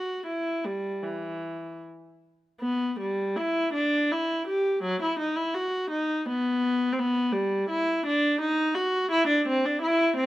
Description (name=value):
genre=classical, baroque-style suite movement for unaccompanied viola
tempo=74-88 BPM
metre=3/4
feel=rubato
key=E minor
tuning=A4 = 440 Hz
part: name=warm viola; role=solo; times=0.0-10.3 s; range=E3 to G4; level=-24 LUFS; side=equal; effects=none
room=light reverb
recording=close, detailed microphones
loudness=-24 LUFS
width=side -15 dB against mid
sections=0.0-2.6 A section; 2.6-10.3 B section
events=none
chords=none